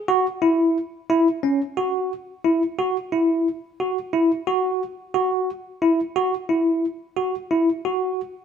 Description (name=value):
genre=progressive instrumental, progressive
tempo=178 BPM (eighths)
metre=5/8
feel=straight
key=unclear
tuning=A4 = 441 Hz
part: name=bell-like tine electric piano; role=solo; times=0.1-8.2 s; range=C#4 to F#4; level=-20 LUFS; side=equal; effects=fast stereo tremolo
room=moderate stone room reverb, RT60 1.1 s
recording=band playing live in one room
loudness=-20 LUFS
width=side -8 dB against mid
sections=0.0-1.8 A section; 1.8-8.4 B section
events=none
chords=none